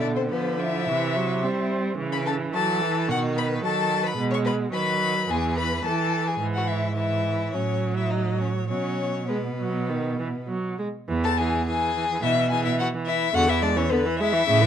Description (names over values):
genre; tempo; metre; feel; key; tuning
quick classical-period movement for string quartet; 99-111 BPM; 4/4; rubato; E major; A4 = 440 Hz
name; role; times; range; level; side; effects
rich violin; melody; 0.0-14.7 s; B4 to C#6; -27 LUFS; left 7 dB; none
rich violin; second line; 0.0-14.7 s; B3 to C#5; -30 LUFS; left 2 dB; none
rich viola; accompaniment; 0.0-14.7 s; C#3 to G#3; -28 LUFS; right 3 dB; none
clear cello; bass; 0.0-14.7 s; E2 to C4; -27 LUFS; right 3 dB; none
room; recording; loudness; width
light reverb; dark, warm production; -22 LUFS; side -9 dB against mid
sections
0.0-11.1 A section; 11.1-14.7 B section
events
none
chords
0.0 Dm13/B; 0.9 C; 2.0 A/C#; 3.1 B; 5.3 Eadd11; 6.4 E/G#; 7.5 F#m/A; 8.7 B5; 9.9 B; 11.1 E; 13.3 E7